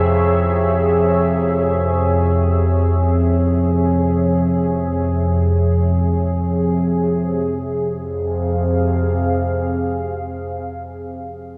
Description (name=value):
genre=dark ambient drone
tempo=free time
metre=none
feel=none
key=F harmonic minor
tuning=A4 = 440 Hz
part: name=deep dark ambient pad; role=sustained chords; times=0.0-10.9 s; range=C4 to F5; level=-24 LUFS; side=equal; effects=chorus, built-in reverb
part: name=analog drone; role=drone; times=0.0-10.5 s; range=F2 to C3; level=-20 LUFS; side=equal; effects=chorus, phaser
part: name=bubbling stepped-filter texture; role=texture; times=0.0-7.5 s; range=Ab4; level=-32 LUFS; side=equal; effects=none
room=wet cathedral reverb, RT60 5.8 s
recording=small room ambience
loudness=-18 LUFS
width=mono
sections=0.0-7.4 A section; 7.4-11.6 B section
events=none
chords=0.0 Dbm; 7.4 Fm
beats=free time